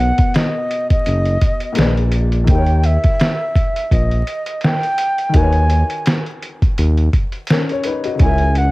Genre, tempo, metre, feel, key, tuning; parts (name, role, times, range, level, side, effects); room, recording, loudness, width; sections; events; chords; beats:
lo-fi hip hop; 84 BPM; 4/4; swing 56% on 16ths; A4 = 439 Hz
breathy mellow concert flute; melody; 0.0-8.7 s; D#5 to G#5; -20 LUFS; right 1 dB; cassette tape
warm upright piano; accompaniment; 0.0-8.7 s; A#2 to E5; -23 LUFS; left 4 dB
smooth synth bass; bass; 0.0-8.7 s; F#1 to D#2; -14 LUFS; equal; tube saturation
lo-fi sampler-style drum kit; drums; 0.2-8.7 s; hi-hat, kick drum, snare drum; -16 LUFS; equal; cassette tape
light reverb, digital ambience; home recording on cassette, vinyl crackle; -14 LUFS; side -21 dB against mid
0.0-8.7 A section
0.0 Bmaj9; 1.8 A#7b9; 2.5 D#7; 5.3 G#m11/D#; 8.2 C#m6
0.34 1.06 1.77 | 2.49 3.20 3.92 4.63 | 5.34 6.06 6.77 7.49 | 8.20